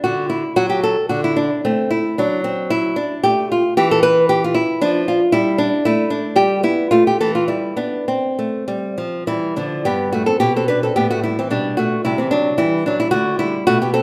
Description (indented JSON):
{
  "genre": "classical, baroque-style dance for nylon-string guitar",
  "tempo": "97-117 BPM",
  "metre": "3/4",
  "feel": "rubato",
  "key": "C major from 3.2 s, G major from 9.9 s",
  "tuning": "A4 = 440 Hz",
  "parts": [
    { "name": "nylon-string guitar", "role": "solo", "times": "0.0-14.0 s", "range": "G2 to B4", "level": "-18 LUFS", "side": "equal", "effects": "none" }
  ],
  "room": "wet recital hall reverb, RT60 1.3 s",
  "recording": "recorded in a church or concert hall",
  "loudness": "-18 LUFS",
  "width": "mono",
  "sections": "0.0-9.9 A section; 9.9-14.0 A section",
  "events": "none",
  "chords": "0.0 D; 1.6 F#m7b5; 3.2 A5; 4.8 Fmaj13; 6.4 G; 6.9 A5; 7.5 G; 8.1 C; 9.9 G; 11.5 G/B",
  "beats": "| 0.04 0.57 1.11 | 1.65 2.18 2.71 | 3.24 3.77 4.29 | 4.80 5.32 5.83 | 6.36 6.91 7.47 | 8.06 8.67 9.26 | 9.86 10.42 10.96 | 11.51 12.04 12.58 | 13.12 13.66"
}